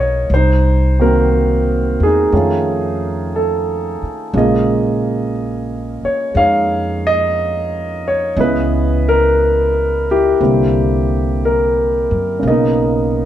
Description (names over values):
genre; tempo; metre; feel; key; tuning
jazz ballad; 59 BPM; 4/4; swing 68% on 8ths; unclear; A4 = 440 Hz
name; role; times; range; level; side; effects
warm concert grand piano; accompaniment; 0.0-13.3 s; Db3 to F5; -15 LUFS; right 1 dB; none
upright bass; bass; 0.0-13.3 s; Bb1 to Gb2; -18 LUFS; equal; none
room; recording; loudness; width
moderate studio reverb, RT60 1.0 s; dark, warm production; -13 LUFS; side -11 dB against mid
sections
0.0-13.3 A section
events
none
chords
0.3 Cm7b5; 2.3 F7alt; 4.3 Bbm7; 8.4 Dbm9; 10.4 C9; 12.4 Bmaj9